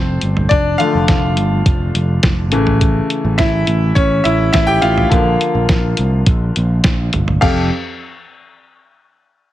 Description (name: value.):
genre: piano-driven pop.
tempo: 104 BPM.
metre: 4/4.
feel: straight.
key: F major.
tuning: A4 = 441 Hz.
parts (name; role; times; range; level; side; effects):
bright concert grand piano; accompaniment; 0.0-7.7 s; F2 to G5; -16 LUFS; left 1 dB; none.
overdriven picked electric bass; bass; 0.0-7.7 s; F1 to C2; -16 LUFS; right 1 dB; none.
lo-fi sampler-style drum kit; drums; 0.2-7.6 s; crash cymbal, hi-hat, kick drum, snare drum, toms; -16 LUFS; equal; none.
room: little or no reverb.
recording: heavily compressed radio sound, multiband compression.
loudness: -12 LUFS.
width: side -14 dB against mid.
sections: 0.0-7.4 A section; 7.4-9.5 B section.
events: grand piano solo 0.0-7.4.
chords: 0.0 Fadd9; 0.5 Dm/F; 2.5 A; 5.1 Bb; 7.4 Fadd9.